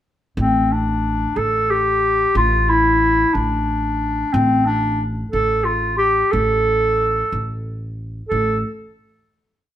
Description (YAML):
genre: Arabic maqam ensemble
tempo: 60 BPM (dotted quarters)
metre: 6/8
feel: straight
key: A maqam bayati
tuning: A4 = 440 Hz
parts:
  - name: warm clarinet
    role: melody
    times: 0.4-8.6 s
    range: C4 to A4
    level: -17 LUFS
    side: equal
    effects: none
  - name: upright bass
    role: bass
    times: 0.4-8.6 s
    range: A1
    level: -22 LUFS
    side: equal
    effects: none
room: moderate stone room reverb, RT60 1.1 s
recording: band playing live in one room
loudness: -16 LUFS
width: side -11 dB against mid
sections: 0.4-8.3 A section; 8.3-9.8 final note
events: none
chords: none